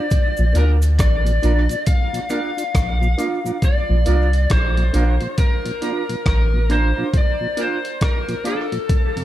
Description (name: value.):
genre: dub reggae.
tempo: 68 BPM.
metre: 4/4.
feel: swing 62% on 16ths.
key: Bb major.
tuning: A4 = 445 Hz.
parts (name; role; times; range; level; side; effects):
lead guitar through a small cranked amp; melody; 0.0-9.2 s; A4 to F5; -24 LUFS; left 2 dB; overdrive, tape echo.
mellow electric guitar; accompaniment; 0.0-9.2 s; D4 to Bb4; -27 LUFS; right 5 dB; phaser, tape echo.
breakbeat sampler-style drum kit; drums; 0.1-9.2 s; hi-hat, kick drum, rim click; -20 LUFS; equal; none.
cabasa; percussion; 0.1-3.9 s; none; -40 LUFS; right 6 dB; tape echo.
mellow tonewheel organ; accompaniment; 0.4-9.2 s; F2 to F4; -29 LUFS; left 1 dB; chorus vibrato, stopped rotary speaker.
soft dub sub bass; bass; 0.4-6.9 s; A1 to D2; -16 LUFS; equal; none.
room: digital ambience.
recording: dark, warm production.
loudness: -16 LUFS.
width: side -13 dB against mid.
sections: 0.0-9.2 A section.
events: part muted 3.6-9.2.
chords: 0.0 Bb.